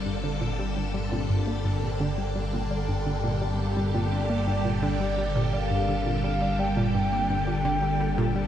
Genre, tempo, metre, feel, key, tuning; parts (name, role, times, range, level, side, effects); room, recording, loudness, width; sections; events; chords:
ambient, sequencer-driven space music; 85 BPM; 4/4; straight; G minor; A4 = 440 Hz
phased string machine; sustained chords; 0.0-8.5 s; D3 to A4; -29 LUFS; equal; ensemble chorus, phaser
analog pluck; riff; 0.0-8.5 s; G2 to Bb3; -30 LUFS; right 1 dB; chorus, tape echo
fat analog bass; bass; 0.0-8.5 s; G1; -30 LUFS; equal
bubbling stepped-filter texture; texture; 0.0-8.5 s; Bb3 to D4; -40 LUFS; left 1 dB; chorus, built-in reverb
mellow horn-like synth lead; melody; 4.1-8.5 s; D5 to G5; -30 LUFS; equal; chorus, cassette tape, tape echo
moderate lush hall reverb, RT60 2.7 s; -24 LUFS; side -10 dB against mid
0.0-8.5 A section
filter sweep on synth arpeggio sound 0.0-8.5
0.0 Gm7